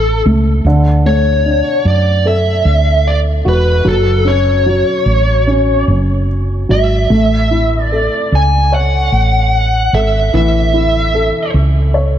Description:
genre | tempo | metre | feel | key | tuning
pop ballad | 75 BPM | 4/4 | straight | A major | A4 = 440 Hz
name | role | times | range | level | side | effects
smooth overdriven lead guitar | melody | 0.0-11.5 s | A4 to G#5 | -15 LUFS | equal | digital delay
dark upright piano | accompaniment | 0.0-12.2 s | D3 to C#5 | -17 LUFS | equal | none
woody fretless electric bass | bass | 0.0-12.2 s | E1 to F#2 | -13 LUFS | right 1 dB | none
room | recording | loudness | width
light reverb, studio ambience | dark, warm production | -10 LUFS | side -10 dB against mid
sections
0.0-12.2 A section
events
none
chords
0.0 A; 0.7 Dadd9; 3.9 F#m; 7.1 A

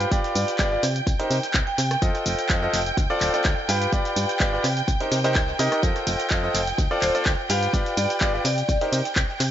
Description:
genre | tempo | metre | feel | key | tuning
piano house | 126 BPM | 4/4 | swing 53% on 16ths | unclear | A4 = 444 Hz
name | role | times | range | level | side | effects
dark studio violin section | sustained chords | 0.0-9.5 s | G5 | -29 LUFS | right 2 dB | vintage 12-bit sampler grit, sidechain pumping
clear baby grand piano | riff | 0.0-9.0 s | Eb4 to G5 | -25 LUFS | equal | sidechain pumping, tape echo
solid FM bass | bass | 0.0-9.5 s | D1 to C3 | -27 LUFS | equal | sidechain pumping
punchy analog drum machine | drums | 0.0-9.5 s | handclaps, hi-hat, ride cymbal, rim click, shaker | -27 LUFS | equal | tape echo
dusty soul sampler-style drum kit | drums | 0.1-9.5 s | hi-hat, snare drum, tambourine | -38 LUFS | equal | none
electronic kick drum | drums | 0.1-9.3 s | none | -24 LUFS | equal | none
vibraphone with hard mallets | melody | 0.4-1.9, 7.0-8.8 s | C5 to G5 | -28 LUFS | equal | tape echo
room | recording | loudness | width
light reverb | echo-heavy mix, nothing above 7.7 kHz | -20 LUFS | side -10 dB against mid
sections
0.0-9.5 A section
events
none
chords
0.0 G7; 0.8 Cm7; 2.0 F7; 3.0 Dm7; 3.7 G7; 4.6 Cm7; 5.8 F7; 6.8 Dm7; 7.5 G7; 8.4 Cm7

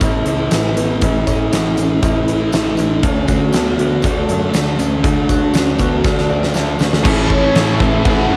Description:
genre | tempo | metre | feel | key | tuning
rock, shoegaze and dream pop | 119 BPM | 4/4 | straight | A major | A4 = 440 Hz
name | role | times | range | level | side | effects
mellow horn-like synth lead | melody | 0.0-8.4 s | A3 to F#5 | -24 LUFS | equal | chorus, analog delay
fingerpicked twelve-string acoustic guitar | arpeggios | 0.0-8.4 s | E3 to F#4 | -27 LUFS | equal | analog chorus, cassette tape, analog delay
electric guitar through a small old amp | riff | 0.0-8.4 s | A2 to A4 | -22 LUFS | equal | reverse reverb, cassette tape
thick fuzz guitar | riff | 0.0-8.4 s | A2 to D4 | -26 LUFS | equal | distortion, lush chorus, cassette tape
picked electric bass | bass | 0.0-8.4 s | F#1 to F#2 | -22 LUFS | equal | none
huge arena drum kit | drums | 0.0-8.2 s | crash cymbal, hi-hat, kick drum, snare drum | -21 LUFS | equal | cassette tape
tambourine | percussion | 0.0-6.9 s | none | -38 LUFS | equal | none
overdriven electric guitar | riff | 7.0-8.4 s | A3 to A4 | -22 LUFS | equal | cassette tape
room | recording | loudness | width
light reverb | home recording on cassette | -15 LUFS | mono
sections
0.0-7.0 A section; 7.0-8.4 B section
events
drum fill 6.0-7.0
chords
0.0 A; 3.0 D; 7.0 A

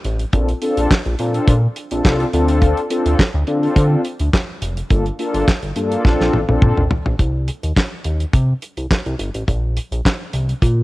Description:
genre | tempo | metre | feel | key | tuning
early-eighties boogie funk | 105 BPM | 4/4 | straight | unclear | A4 = 439 Hz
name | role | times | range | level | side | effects
chorused synth bass | bass | 0.0-10.8 s | F1 to D3 | -18 LUFS | equal | none
damped 70s drum kit | drums | 0.0-10.8 s | handclaps, hi-hat, kick drum, snare drum, toms | -17 LUFS | equal | cassette tape
mellow synth brass | accompaniment | 0.3-6.8 s | Bb3 to A4 | -19 LUFS | left 2 dB | chorus
room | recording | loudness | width
studio reverb | home recording on cassette | -15 LUFS | side -19 dB against mid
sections
0.0-7.2 A section; 7.2-10.8 B section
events
drum fill 6.0-7.2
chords
0.3 Bbmaj7; 2.3 Dm7; 4.9 Gm9; 6.0 Bbmaj9; 7.2 Cm; 9.5 Bbsus2

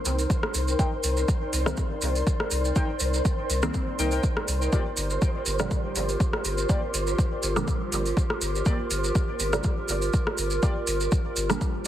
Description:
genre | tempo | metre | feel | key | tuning
dub techno | 122 BPM | 4/4 | swing 54% on 16ths | C minor | A4 = 442 Hz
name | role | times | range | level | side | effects
warbly tape-like pad | sustained chords | 0.0-11.9 s | Eb4 to D5 | -31 LUFS | equal | chorus, built-in reverb, vintage 12-bit sampler grit, sidechain pumping
filtered dub chord stab | stabs | 0.0-11.9 s | Bb2 to C4 | -33 LUFS | right 1 dB | phaser, sidechain pumping, dub echo
flickering grainy texture | texture | 0.0-11.9 s | C5 | -35 LUFS | equal | built-in reverb, sidechain pumping
soft dub sub bass | bass | 0.1-11.6 s | G1 to C2 | -28 LUFS | equal | sidechain pumping
deep house drum kit | drums | 0.1-11.6 s | hi-hat, rim click | -32 LUFS | left 1 dB | overdrive, dub echo
maracas | percussion | 0.1-11.9 s | none | -33 LUFS | right 4 dB | none
electronic kick drum | drums | 0.3-11.7 s | none | -25 LUFS | equal | overdrive
warbly lo-fi synth keys | riff | 0.8-10.7 s | Bb3 to G5 | -35 LUFS | left 1 dB | chorus, phaser, sidechain pumping, dub echo
room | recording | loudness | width
light reverb | heavily compressed radio sound | -23 LUFS | side -11 dB against mid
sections
0.0-11.9 A section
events
none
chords
0.0 Cm7; 4.7 Gm7

